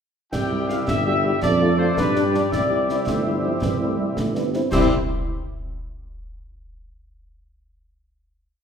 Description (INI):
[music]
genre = military-style march for wind band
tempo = 109 BPM (dotted quarters)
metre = 6/8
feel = straight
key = C major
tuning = A4 = 440 Hz
[part]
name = dark trumpet section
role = melody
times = 0.3-4.9 s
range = B4 to G5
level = -26 LUFS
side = left 1 dB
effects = none
[part]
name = mellow woodwind section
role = second line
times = 0.3-4.9 s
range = G4 to E5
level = -29 LUFS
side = left 1 dB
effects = none
[part]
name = bright trombone section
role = sustained chords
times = 0.3-4.9 s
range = G3 to E4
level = -29 LUFS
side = equal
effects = none
[part]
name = warm tuba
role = bass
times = 0.3-4.9 s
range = G1 to G2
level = -24 LUFS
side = right 2 dB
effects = none
[part]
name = concert snare drum, clash cymbals and concert bass drum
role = drums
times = 0.3-4.9 s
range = none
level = -28 LUFS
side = equal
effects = none
[part]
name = mellow French horn section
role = accompaniment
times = 0.5-4.9 s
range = G3 to G4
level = -27 LUFS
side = left 4 dB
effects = none
[part]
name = mellow euphonium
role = second line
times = 3.1-4.7 s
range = E3 to C4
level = -27 LUFS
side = right 4 dB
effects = none
[sound]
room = wet recital hall reverb, RT60 1.6 s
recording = recorded in a church or concert hall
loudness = -19 LUFS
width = side -7 dB against mid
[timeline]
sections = 0.3-4.7 A section; 4.7-5.8 final chord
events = none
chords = 0.3 C; 1.4 Dm/F; 2.0 G; 2.5 C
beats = | 0.33 0.88 | 1.42 1.97 | 2.52 3.07 | 3.62 4.17 | 4.72